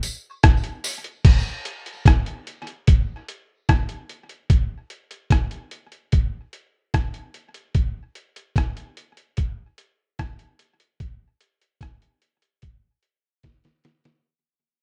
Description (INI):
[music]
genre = reggae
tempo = 74 BPM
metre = 4/4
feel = straight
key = none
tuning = none
[part]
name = trip hop sampler-style drum kit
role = drums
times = 0.0-14.2 s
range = crash cymbal, hi-hat, kick drum, rim click, snare drum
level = -20 LUFS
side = equal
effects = none
[part]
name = tambourine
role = percussion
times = 0.0-1.0 s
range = none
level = -35 LUFS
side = equal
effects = tape echo
[sound]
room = little or no reverb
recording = dry, close 1970s-style studio recording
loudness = -22 LUFS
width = mono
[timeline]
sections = 0.0-1.2 A section; 1.2-14.2 B section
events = fade-out 1.2-14.2; drum fill 13.4-14.2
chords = none